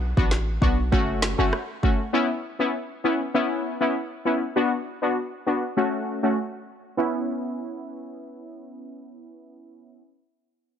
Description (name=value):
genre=dancehall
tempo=99 BPM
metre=4/4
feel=straight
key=C# phrygian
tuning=A4 = 440 Hz
part: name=hard-hitting 808-style bass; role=bass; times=0.0-1.5 s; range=F#1 to B1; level=-25 LUFS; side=equal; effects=none
part: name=downlifter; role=sound effects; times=0.0-2.1 s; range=none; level=-52 LUFS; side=equal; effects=none
part: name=synth brass stab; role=accompaniment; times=0.2-10.0 s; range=A3 to F#4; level=-24 LUFS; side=left 1 dB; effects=chorus, sidechain pumping, low-pass filter
part: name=afro-pop drum kit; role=drums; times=0.2-2.0 s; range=kick drum, rim click, snare drum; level=-24 LUFS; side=equal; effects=overdrive, vintage 12-bit sampler grit
room=light reverb, digital ambience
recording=none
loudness=-22 LUFS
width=side -8 dB against mid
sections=0.0-7.0 A section; 7.0-9.4 B section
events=filter sweep on synth stab 0.0-7.0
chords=0.0 Bm; 0.9 F#m; 2.1 C#m7; 4.6 Bm; 5.8 F#m; 7.0 C#m7